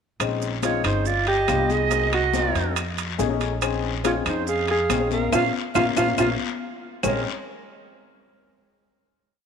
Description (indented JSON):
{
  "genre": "Afro-Cuban jazz",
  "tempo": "140 BPM",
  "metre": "4/4",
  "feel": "straight",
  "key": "Bb minor",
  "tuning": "A4 = 440 Hz",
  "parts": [
    { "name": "warm upright piano", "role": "accompaniment", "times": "0.2-7.2 s", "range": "Ab3 to G#4", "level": "-28 LUFS", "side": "left 9 dB", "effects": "none" },
    { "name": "upright bass", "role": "bass", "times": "0.2-7.2 s", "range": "G1 to F2", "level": "-28 LUFS", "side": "right 1 dB", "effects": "none" },
    { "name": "claves", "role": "percussion", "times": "0.2-7.1 s", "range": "none", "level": "-33 LUFS", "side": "left 10 dB", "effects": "none" },
    { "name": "congas", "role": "percussion", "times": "0.2-7.1 s", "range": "none", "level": "-31 LUFS", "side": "left 12 dB", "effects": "none" },
    { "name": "guiro", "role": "percussion", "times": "0.2-7.1 s", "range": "none", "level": "-35 LUFS", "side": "left 12 dB", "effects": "none" },
    { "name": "maracas", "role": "percussion", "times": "0.2-7.1 s", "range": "none", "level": "-37 LUFS", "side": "right 16 dB", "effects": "none" },
    { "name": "timbales", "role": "percussion", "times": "0.2-7.1 s", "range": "none", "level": "-31 LUFS", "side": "right 12 dB", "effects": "none" },
    { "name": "mellow alto saxophone", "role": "melody", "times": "0.6-7.2 s", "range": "Eb4 to Db5", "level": "-25 LUFS", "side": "right 1 dB", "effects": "none" },
    { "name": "breathy bright jazz flute", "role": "second line", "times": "0.6-7.2 s", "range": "Bb4 to F5", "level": "-28 LUFS", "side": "right 10 dB", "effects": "slapback echo" }
  ],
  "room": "moderate echo chamber reverb, RT60 2.4 s",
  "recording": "1960s-style stereo with parts hard left and right",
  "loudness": "-20 LUFS",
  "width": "side -6 dB against mid",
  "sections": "0.2-7.0 A section; 7.0-8.7 final chord",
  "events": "band accent 5.3-7.0; drum fill 6.6-7.0",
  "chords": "0.2 Bbm11; 1.1 G7b13; 1.9 Cm7b5; 2.8 F7alt; 3.6 Bbm11"
}